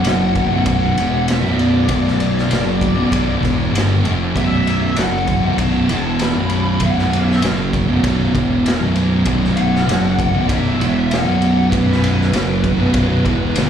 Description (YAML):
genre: stoner and doom metal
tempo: 98 BPM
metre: 4/4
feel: straight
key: B minor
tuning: A4 = 439 Hz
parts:
  - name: fuzz lead guitar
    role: melody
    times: 0.0-13.7 s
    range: B4 to B5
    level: -24 LUFS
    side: left 2 dB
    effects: wah, distortion, slapback echo, analog delay
  - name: thick fuzz guitar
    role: riff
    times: 0.0-13.7 s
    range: B1 to G3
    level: -21 LUFS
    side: left 8 dB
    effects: distortion, slapback echo
  - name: thick fuzz guitar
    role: riff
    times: 0.0-13.7 s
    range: B1 to G3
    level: -19 LUFS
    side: right 7 dB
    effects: distortion, slapback echo
  - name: raw garage drum kit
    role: drums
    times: 0.0-13.7 s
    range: kick drum, ride cymbal, snare drum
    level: -21 LUFS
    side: left 1 dB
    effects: none
  - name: overdriven picked electric bass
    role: bass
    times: 0.1-13.7 s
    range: B0 to G1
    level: -20 LUFS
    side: left 1 dB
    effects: none
room: light reverb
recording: live gig heard through the venue's PA, club reverb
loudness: -14 LUFS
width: side -8 dB against mid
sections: 0.0-13.7 A section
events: none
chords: 0.0 B5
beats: 0.05 0.66 1.28 | 1.89 2.51 3.12 3.74 | 4.35 4.97 5.58 6.20 | 6.81 7.42 8.04 8.65 | 9.27 9.88 10.50 11.11 | 11.72 12.34 12.95 13.56